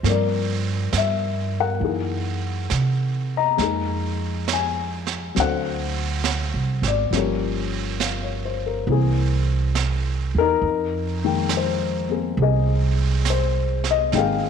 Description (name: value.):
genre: jazz ballad.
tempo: 68 BPM.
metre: 4/4.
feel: swing 69% on 8ths.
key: F minor.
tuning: A4 = 440 Hz.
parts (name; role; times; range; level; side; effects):
dark baby grand piano; accompaniment; 0.0-14.5 s; Eb3 to Bb5; -24 LUFS; left 11 dB; none.
upright bass; bass; 0.0-14.5 s; G1 to C3; -23 LUFS; right 3 dB; none.
vintage brush drum kit; drums; 0.0-14.5 s; brushed snare drum, hi-hat, snare drum; -29 LUFS; right 11 dB; none.
room: light reverb, small room reverb.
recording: 1960s-style stereo with parts hard left and right.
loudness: -20 LUFS.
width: side -7 dB against mid.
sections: 0.0-14.5 A section.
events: none.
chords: 0.0 Gm7; 1.8 Gb13; 3.6 Fm7; 5.4 D7; 7.1 Gm7b5; 8.9 C7b13; 10.6 Fm11.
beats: | 0.04 0.92 1.81 2.70 | 3.59 4.47 5.36 6.25 | 7.13 8.00 8.88 9.75 | 10.62 11.50 12.38 13.25 | 14.13.